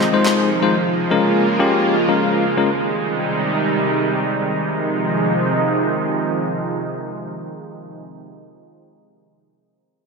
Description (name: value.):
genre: pop.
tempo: 123 BPM.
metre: 4/4.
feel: straight.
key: F minor.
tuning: A4 = 440 Hz.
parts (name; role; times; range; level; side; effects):
supersaw pad; sustained chords; 0.0-8.0 s; C3 to F4; -19 LUFS; right 2 dB; wide subtle chorus, low-pass filter.
bell-like tine electric piano; accompaniment; 0.1-2.7 s; Ab3 to C5; -18 LUFS; left 4 dB; fast stereo tremolo, low-pass filter.
room: wet lush hall reverb, RT60 2.1 s.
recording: dreamy mix soaked in reverb.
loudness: -16 LUFS.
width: side -4 dB against mid.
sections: 0.0-4.6 A section; 4.6-8.5 B section.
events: none.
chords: 0.0 Fm7; 0.7 Bbm7; 2.7 Abmaj7; 4.6 Fm7.